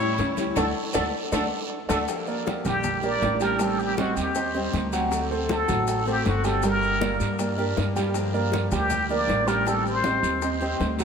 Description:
latin, Cuban son and guajira; 158 BPM; 4/4; straight; G minor; A4 = 441 Hz
trumpet with plunger mute; melody; 0.0-10.6 s; F#4 to D5; -27 LUFS; left 1 dB
rich studio violin section; second line; 0.0-2.0 s; A3 to E4; -33 LUFS; left 1 dB
picked steel-string acoustic guitar; accompaniment; 0.0-11.0 s; D3 to G4; -31 LUFS; left 2 dB
clear concert grand piano; arpeggios; 0.0-11.0 s; F#3 to E6; -28 LUFS; right 3 dB
upright bass; bass; 0.0-11.0 s; G1 to A2; -29 LUFS; equal
bongos; percussion; 0.0-11.0 s; -36 LUFS; left 6 dB
congas; percussion; 0.0-11.0 s; -35 LUFS; left 2 dB
guiro; percussion; 0.2-11.0 s; -38 LUFS; right 6 dB
maracas; percussion; 0.2-11.0 s; -42 LUFS; left 7 dB
wet plate reverb, RT60 3.5 s; heard from further back in the room; -22 LUFS; side -6 dB against mid
0.0-2.1 A section; 2.1-11.0 B section
band accent 0.6-2.1; drum fill 1.1-2.1
0.0 A7; 0.6 D; 2.1 Gm7; 3.6 Am7b5; 5.1 D7; 6.6 Gm; 8.1 Gm7; 9.7 Am7b5

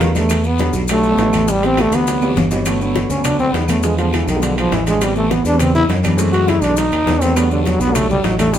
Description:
Afro-Cuban jazz; 204 BPM; 4/4; straight; A4 = 440 Hz
warm concert grand piano; accompaniment; 0.0-8.6 s; C3 to D4; -21 LUFS; right 2 dB
fingered electric bass; bass; 0.0-8.6 s; G1 to F#2; -19 LUFS; equal
bongos; percussion; 0.0-8.6 s; -28 LUFS; left 6 dB
congas; percussion; 0.0-8.6 s; -24 LUFS; left 2 dB
guiro; percussion; 0.0-8.6 s; -32 LUFS; left 3 dB
maracas; percussion; 0.0-8.6 s; -31 LUFS; left 4 dB
timbales; percussion; 0.0-8.5 s; -27 LUFS; right 2 dB
growling trombone; melody; 0.2-8.6 s; D3 to F#4; -17 LUFS; equal
claves; percussion; 0.3-8.5 s; -34 LUFS; equal
wet studio reverb, RT60 0.7 s; band playing live in one room; -13 LUFS; side -10 dB against mid
0.0-2.7 A section; 2.7-8.6 B section
drum fill 2.2-2.7; trombone solo 2.7-8.6
0.3 Em9; 1.5 Am7; 2.1 D13; 2.7 Gmaj7; 3.8 E7b9; 5.0 Am9; 6.2 F#m7b5; 6.8 B7; 7.4 Em11

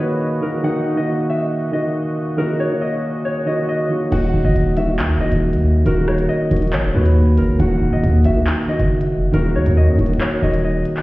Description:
hip hop, drill; 138 BPM; 4/4; half-time; Eb phrygian; A4 = 440 Hz
concert harp; melody; 0.0-11.0 s; Bb4 to Gb5; -24 LUFS; left 1 dB; low-pass filter, tape echo
dark baby grand piano; accompaniment; 0.0-11.0 s; Bb2 to Gb4; -19 LUFS; right 1 dB; low-pass filter
accordion; sustained chords; 0.0-4.1 s; Bb2 to Eb5; -29 LUFS; right 1 dB; light tremolo tuning
hard-hitting 808-style bass; bass; 4.1-10.8 s; Eb1 to Gb2; -16 LUFS; equal
drill drum kit; drums; 4.1-11.0 s; crash cymbal, handclaps, hi-hat, rim click; -28 LUFS; equal
light reverb, small room reverb; heard muffled through a wall, stone room reverb, EQ; -15 LUFS; side -19 dB against mid
0.0-4.1 A section; 4.1-11.0 B section
0.0 Ebm

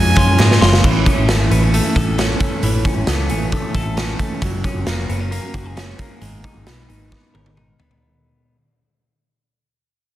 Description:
jangly indie pop; 134 BPM; 4/4; straight; A4 = 440 Hz
warm violin; melody; 0.0-0.6 s; G#5; -20 LUFS; right 1 dB; digital delay
picked steel-string acoustic guitar; accompaniment; 0.0-8.0 s; G#2 to A#4; -26 LUFS; right 7 dB
warm upright piano; accompaniment; 0.0-0.8 s; barely audible
twelve-string electric guitar; arpeggios; 0.0-8.6 s; E3 to A#4; -23 LUFS; left 3 dB; digital delay
vintage muted fingered electric bass; bass; 0.0-7.7 s; E#1 to G#2; -18 LUFS; equal
raw garage drum kit; drums; 0.2-8.0 s; crash cymbal, hi-hat, kick drum, snare drum, toms; -18 LUFS; equal
group handclap; percussion; 0.2-0.5 s; -27 LUFS; right 3 dB
light reverb; dense, heavily limited modern master; -14 LUFS; side -13 dB against mid
0.8-8.0 A section
drum fill 0.4-0.8, 7.1-8.0; fade-out 0.8-8.0
0.0 C#; 0.8 A; 4.4 F#add9; 6.2 G#madd9

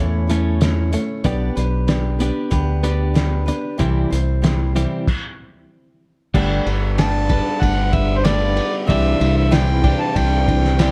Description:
folk rock and heartland rock; 94 BPM; 4/4; straight; A4 = 440 Hz
picked steel-string acoustic guitar; accompaniment; 0.0-10.9 s; A2 to C#5; -28 LUFS; equal
twelve-string electric guitar; riff; 0.0-10.9 s; A2 to A4; -26 LUFS; equal
deep dub fingered electric bass; bass; 0.0-10.9 s; G1 to E2; -22 LUFS; equal
cloth-damped thuddy drum kit; drums; 0.3-10.9 s; crash cymbal, hi-hat, kick drum, ride cymbal, snare drum; -24 LUFS; equal
overdriven harmonica; melody; 7.0-10.9 s; C5 to A5; -25 LUFS; equal
small room ambience; dark, warm production; -18 LUFS; mono
0.0-6.4 A section; 6.4-10.9 B section
stop 5.1-6.4
0.0 A; 1.3 G/B; 3.8 C; 6.4 Gadd9; 8.9 Cadd9

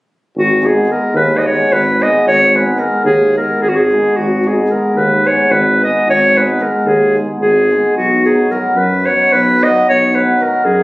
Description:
balkan folk, Balkan wedding band; 221 BPM (eighths); 7/8; straight; G# minor; A4 = 440 Hz
warm clarinet; melody; 0.4-10.8 s; F#4 to D#5; -12 LUFS; equal
warm tuba; bass; 0.4-10.8 s; G#1 to F#2; -17 LUFS; equal
cimbalom; accompaniment; 0.6-10.8 s; F#3 to G#4; -18 LUFS; equal
light reverb; recorded on a phone in the room, club reverb; -10 LUFS; side -19 dB against mid
0.3-10.8 A section
0.3 G#m; 8.0 B

